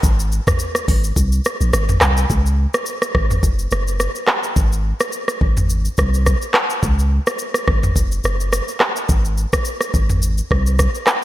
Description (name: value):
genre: afrobeats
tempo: 106 BPM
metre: 4/4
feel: swing 55% on 16ths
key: unclear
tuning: A4 = 440 Hz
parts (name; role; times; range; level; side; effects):
- punchy sub bass; bass; 0.0-10.9 s; Gb1 to Db2; -18 LUFS; equal; none
- afro-pop drum kit; drums; 0.0-11.2 s; handclaps, hi-hat, kick drum, rim click, shaker, toms; -17 LUFS; equal; none
room: light reverb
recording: none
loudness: -15 LUFS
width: side -15 dB against mid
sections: 0.0-2.3 A section; 2.3-11.2 B section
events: none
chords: none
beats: | 0.04 0.60 1.17 1.73 | 2.30 2.87 3.43 4.00 | 4.56 5.13 5.70 6.26 | 6.83 7.39 7.96 8.53 | 9.09 9.66 10.22 10.79